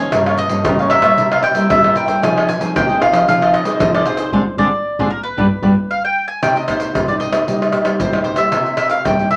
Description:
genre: samba and choro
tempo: 114 BPM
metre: 4/4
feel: straight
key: C minor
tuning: A4 = 441 Hz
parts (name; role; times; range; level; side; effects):
- mandolin; melody; 0.0-9.4 s; Bb4 to Ab5; -20 LUFS; equal; none
- cavaquinho; accompaniment; 0.0-5.7 s; E4 to Ab5; -25 LUFS; equal; none
- nylon-string guitar; accompaniment; 0.0-9.4 s; G2 to Ab4; -23 LUFS; equal; none
- nylon-string guitar; bass; 0.1-9.4 s; G2 to C4; -26 LUFS; equal; none
- tube shaker, surdo, pandeiro and tamborim; percussion; 0.1-9.4 s; none; -20 LUFS; equal; none
room: wet studio ambience, RT60 0.5 s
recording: none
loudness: -16 LUFS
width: mono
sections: 0.0-6.4 A section; 6.4-9.4 B section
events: band accent 4.3-6.4; drum fill 5.4-6.4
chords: 0.1 Gm7b5; 1.2 C7; 2.2 Fm7; 4.3 Bb9/D (rootless); 5.4 G; 6.4 Cm7; 8.5 C7

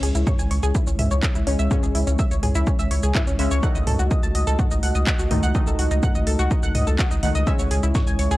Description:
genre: melodic techno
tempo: 125 BPM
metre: 4/4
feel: straight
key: C# minor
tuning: A4 = 440 Hz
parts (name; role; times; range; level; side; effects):
- dark analog pad; sustained chords; 0.0-8.4 s; G#3 to D#5; -30 LUFS; right 1 dB; chorus, sidechain pumping
- analog pluck; arpeggios; 0.0-8.4 s; C#4 to A5; -28 LUFS; left 1 dB; lush chorus, sidechain pumping, analog delay
- synth brass stab; stabs; 0.0-8.4 s; C#3 to D#4; -30 LUFS; left 2 dB; chorus, phaser, sidechain pumping, analog delay
- round analog bass; bass; 0.0-8.4 s; C#2; -21 LUFS; equal; sidechain pumping
- house drum kit; drums; 0.0-8.4 s; handclaps, hi-hat, shaker, toms; -29 LUFS; right 1 dB; none
- electronic kick drum; drums; 0.3-8.0 s; none; -22 LUFS; equal; none
- dusty soul sampler-style drum kit; drums; 7.5-8.4 s; hi-hat, snare drum; -40 LUFS; left 1 dB; high-pass filter on hats, high-pass filter on snare
room: little or no reverb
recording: dry, gritty hardware recording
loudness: -18 LUFS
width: side -17 dB against mid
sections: 0.0-8.4 A section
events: none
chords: 0.0 C#m; 3.6 D#dim/C#; 7.5 C#m

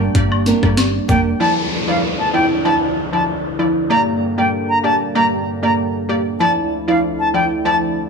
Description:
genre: dancehall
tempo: 96 BPM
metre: 4/4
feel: straight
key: unclear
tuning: A4 = 436 Hz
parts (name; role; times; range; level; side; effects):
- glassy wavetable pluck; accompaniment; 0.0-8.1 s; F3 to D5; -19 LUFS; right 1 dB; chorus
- warm analog pad; sustained chords; 0.0-8.1 s; D2 to G4; -24 LUFS; right 1 dB; chorus, sidechain pumping
- nylon-string guitar; arpeggios; 0.0-1.3 s; Bb3 to Bb4; -20 LUFS; right 5 dB; none
- solid FM bass; bass; 0.0-1.3 s; F1 to G1; -18 LUFS; equal; none
- island pop drum kit; drums; 0.1-1.2 s; hi-hat, kick drum, rim click, snare drum; -18 LUFS; left 1 dB; overdrive
- woodblock and cabasa; percussion; 0.3-1.2 s; none; -29 LUFS; left 4 dB; none
- bright reedy silver concert flute; melody; 1.1-7.8 s; F5 to Bb5; -19 LUFS; left 1 dB; tape echo
- downlifter; sound effects; 1.4-6.4 s; none; -25 LUFS; left 2 dB; none
room: light reverb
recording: none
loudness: -14 LUFS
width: side -5 dB against mid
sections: 0.0-1.4 A section; 1.4-8.1 B section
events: none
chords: 0.0 Gm; 1.4 Dmadd9; 3.9 Gm; 6.4 Dmadd9

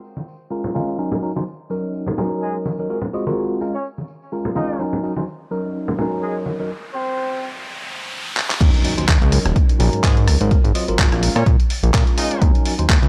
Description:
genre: filtered disco house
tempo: 126 BPM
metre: 4/4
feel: swing 56% on 16ths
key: Eb dorian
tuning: A4 = 437 Hz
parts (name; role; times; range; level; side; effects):
- tambourine and congas; percussion; 0.0-6.7 s; none; -28 LUFS; equal; sidechain pumping on perc, low-pass filter on perc
- tine electric piano; accompaniment; 0.5-12.9 s; Gb3 to Eb5; -26 LUFS; equal; phaser, sidechain pumping, low-pass filter
- warm horn section; melody; 2.4-12.5 s; Ab3 to Eb5; -32 LUFS; equal; sidechain pumping, low-pass filter, tape echo
- riser and impact; sound effects; 6.1-10.5 s; none; -33 LUFS; equal; none
- dusty soul sampler-style drum kit; drums; 8.4-13.1 s; crash cymbal, handclaps, hi-hat, rim click; -25 LUFS; equal; studio reverb, sidechain pumping on hats, sidechain pumping on cymbals
- fat analog bass; bass; 8.6-13.1 s; Eb1 to Bb2; -20 LUFS; equal; sidechain pumping, low-pass filter
- electronic kick drum; drums; 8.6-13.0 s; none; -18 LUFS; equal; studio reverb
room: little or no reverb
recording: dry, gritty hardware recording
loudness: -19 LUFS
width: mono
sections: 0.0-8.6 A section; 8.6-13.1 B section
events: filter sweep 0.0-8.6; riser 6.1-8.6; drum fill 8.4; drop 8.6-13.1; impact 8.6-10.5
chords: 0.0 Bbm7; 1.0 Ebm7; 2.9 Ab13; 3.6 Bbm7; 4.8 Ebm7; 6.7 N.C.; 8.6 Ebm7; 10.5 Ab13; 11.2 Bbm7; 12.4 Ebm7

